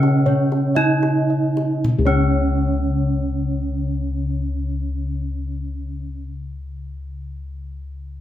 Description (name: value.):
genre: Javanese gamelan.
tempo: 51-63 BPM.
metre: 4/4.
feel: straight.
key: unclear.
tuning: A4 = 440 Hz.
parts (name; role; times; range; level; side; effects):
gamelan-type bronze metallophone; melody; 0.0-6.3 s; Db4 to Eb4+30c; -23 LUFS; right 3 dB; none.
gamelan-type bossed gongs; arpeggios; 0.0-6.3 s; Db5 to Eb5+30c; -31 LUFS; left 4 dB; none.
gamelan-type bronze metallophone; arpeggios; 0.0-6.3 s; Db5 to Eb5+30c; -30 LUFS; right 4 dB; none.
gamelan-type bossed gongs; bass; 0.0-6.2 s; Db2 to Cb5-45c; -22 LUFS; left 2 dB; none.
kendang; percussion; 0.0-2.4 s; none; -26 LUFS; left 1 dB; none.
room: little or no reverb.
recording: none.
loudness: -18 LUFS.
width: side -12 dB against mid.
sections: 0.0-1.9 A section; 1.9-6.6 B section.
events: slowing down 0.0-1.9.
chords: none.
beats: 0.76 | 1.87 3.06 4.25 5.43.